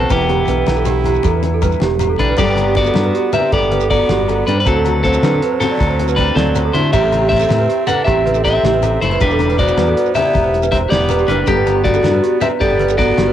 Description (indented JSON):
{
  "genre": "highlife guitar band",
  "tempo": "106 BPM (dotted quarters)",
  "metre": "12/8",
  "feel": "straight",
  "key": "G major",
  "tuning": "A4 = 439 Hz",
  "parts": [
    { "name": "electric guitar at the edge of break-up", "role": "melody", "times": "0.0-13.3 s", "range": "B3 to F#5", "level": "-16 LUFS", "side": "left 2 dB", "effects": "cassette tape" },
    { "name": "growling trumpet", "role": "second line", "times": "0.0-13.3 s", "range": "F#3 to F#4", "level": "-26 LUFS", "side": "right 9 dB", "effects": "none" },
    { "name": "nylon-string guitar", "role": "accompaniment", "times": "0.0-13.3 s", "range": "G2 to A4", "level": "-25 LUFS", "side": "left 8 dB", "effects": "none" },
    { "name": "large celesta", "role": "arpeggios", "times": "0.0-13.3 s", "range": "G4 to D5", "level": "-19 LUFS", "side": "right 9 dB", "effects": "tape echo" },
    { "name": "modern bright fingered electric bass", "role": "bass", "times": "0.0-13.3 s", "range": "E1 to D3", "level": "-19 LUFS", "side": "equal", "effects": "none" },
    { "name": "congas", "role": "percussion", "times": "0.0-13.3 s", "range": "none", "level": "-26 LUFS", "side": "left 7 dB", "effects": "none" },
    { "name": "cloth-damped thuddy drum kit", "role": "drums", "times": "0.1-13.3 s", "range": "crash cymbal, hi-hat, kick drum, snare drum", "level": "-21 LUFS", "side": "equal", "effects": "cassette tape" },
    { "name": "agogo bells", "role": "percussion", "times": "0.1-13.2 s", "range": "none", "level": "-28 LUFS", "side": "left 12 dB", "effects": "none" },
    { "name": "shekere", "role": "percussion", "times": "0.1-13.0 s", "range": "none", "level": "-27 LUFS", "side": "right 5 dB", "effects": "none" }
  ],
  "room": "light reverb, small room ambience",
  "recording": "home recording on cassette",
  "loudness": "-12 LUFS",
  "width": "side -10 dB against mid",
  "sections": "0.0-2.4 A section; 2.4-13.3 B section",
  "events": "none",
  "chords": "0.1 Em7; 2.4 Gadd9; 4.7 D7; 6.9 Am7; 9.2 Em7; 11.5 Gadd9"
}